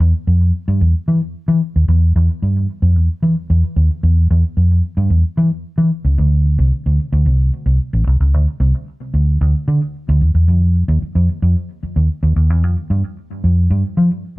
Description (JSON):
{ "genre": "funk", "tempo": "112 BPM", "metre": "4/4", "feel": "straight", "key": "unclear", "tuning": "A4 = 439 Hz", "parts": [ { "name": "vintage muted fingered electric bass", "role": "solo", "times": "0.0-14.1 s", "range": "A1 to F3", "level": "-13 LUFS", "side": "equal", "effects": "none" } ], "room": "moderate studio reverb, RT60 0.5 s", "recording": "none", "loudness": "-13 LUFS", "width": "side -21 dB against mid", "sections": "0.0-6.2 A section; 6.2-14.4 B section", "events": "none", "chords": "none" }